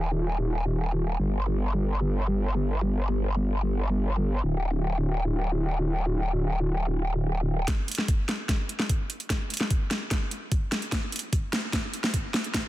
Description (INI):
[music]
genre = heavy wobble dubstep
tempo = 148 BPM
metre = 4/4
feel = half-time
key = unclear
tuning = A4 = 440 Hz
[part]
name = growl bass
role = bass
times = 0.0-7.7 s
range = D1 to G1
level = -24 LUFS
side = equal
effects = chorus, overdrive
[part]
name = dubstep drum kit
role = drums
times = 7.7-12.6 s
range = hi-hat, snare drum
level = -28 LUFS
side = equal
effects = none
[part]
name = electronic kick drum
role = drums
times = 7.7-12.6 s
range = none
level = -27 LUFS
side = equal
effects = none
[sound]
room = little or no reverb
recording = dense, heavily limited modern master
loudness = -25 LUFS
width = side -15 dB against mid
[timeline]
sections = 0.0-7.7 A section; 7.7-12.7 B section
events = build-up 7.7-12.7; drum fill 7.7-12.7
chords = none